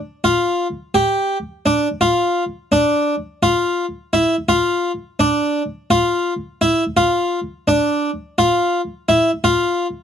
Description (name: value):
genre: progressive instrumental, progressive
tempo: 170 BPM (eighths)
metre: 7/8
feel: straight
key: unclear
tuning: A4 = 440 Hz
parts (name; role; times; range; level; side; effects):
- harpsichord; solo; 0.2-9.9 s; D4 to G4; -15 LUFS; equal; none
room: light reverb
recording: dry, close 1970s-style studio recording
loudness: -16 LUFS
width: side -8 dB against mid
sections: 0.0-2.0 A section; 2.0-10.0 B section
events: none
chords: none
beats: 0.24 0.60 0.95 1.31 1.66 | 2.01 2.37 2.72 3.08 3.43 3.78 4.14 | 4.49 4.84 5.20 5.55 5.91 6.26 6.61 | 6.97 7.32 7.67 8.03 8.38 8.73 9.09 | 9.44 9.79